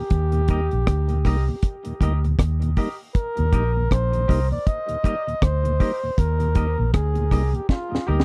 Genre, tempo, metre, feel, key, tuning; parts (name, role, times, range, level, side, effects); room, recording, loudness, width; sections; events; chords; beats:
roots reggae; 79 BPM; 4/4; swing 59% on 16ths; Eb major; A4 = 441 Hz
warm flugelhorn; melody; 0.0-8.2 s; F4 to Eb5; -30 LUFS; equal; dub echo
mellow tonewheel organ; accompaniment; 0.0-8.2 s; Eb2 to Eb4; -33 LUFS; equal; slow rotary speaker, dub echo
vintage muted fingered electric bass; bass; 0.1-8.2 s; Bb1 to Eb2; -24 LUFS; equal
deep reggae drum kit; drums; 0.1-8.2 s; hi-hat, kick drum, rim click, snare drum; -22 LUFS; equal
twangy electric guitar; accompaniment; 0.5-8.2 s; G4 to Eb5; -39 LUFS; equal; dub echo
little or no reverb; dry, close 1970s-style studio recording; -22 LUFS; mono
0.0-8.2 A section
drum fill 7.7-8.2
0.0 Eb
| 0.11 0.87 1.63 2.39 | 3.14 3.90 4.66 5.42 | 6.18 6.93 7.69